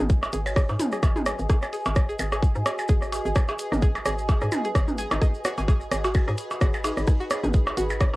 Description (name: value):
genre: minimal techno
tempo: 129 BPM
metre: 4/4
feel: swing 56% on 16ths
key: G# minor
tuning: A4 = 440 Hz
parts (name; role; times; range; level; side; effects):
- string-like resonator pluck; riff; 0.0-8.0 s; D#4 to G#5; -33 LUFS; equal; chorus, sidechain pumping, cassette tape
- hollow knocking FM bass; bass; 0.0-8.2 s; G#1 to G#2; -30 LUFS; equal; sidechain pumping
- pulsing gated texture; texture; 0.1-8.2 s; G#4; -37 LUFS; right 1 dB; chorus, built-in reverb, sidechain pumping, cassette tape
- warbly tape-like pad; texture; 0.0-8.2 s; F#4 to B5; -34 LUFS; equal; chorus, built-in reverb, sidechain pumping, cassette tape
- electronic kick drum; drums; 0.1-8.1 s; none; -20 LUFS; equal; cassette tape
- maracas; percussion; 0.1-8.1 s; none; -43 LUFS; left 1 dB; none
- minimal click drum kit; percussion; 0.2-8.2 s; percussion blips, rim click, toms; -28 LUFS; right 1 dB; cassette tape
- garage drum kit; drums; 0.3-7.9 s; hi-hat, rim click; -34 LUFS; equal; cassette tape
- buzzing kalimba; melody; 0.5-0.9, 6.0-7.0 s; D#4 to C#5; -37 LUFS; left 2 dB; cassette tape, analog delay
room: light reverb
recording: home recording on cassette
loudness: -22 LUFS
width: side -20 dB against mid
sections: 0.0-8.2 A section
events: none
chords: 0.0 G#m7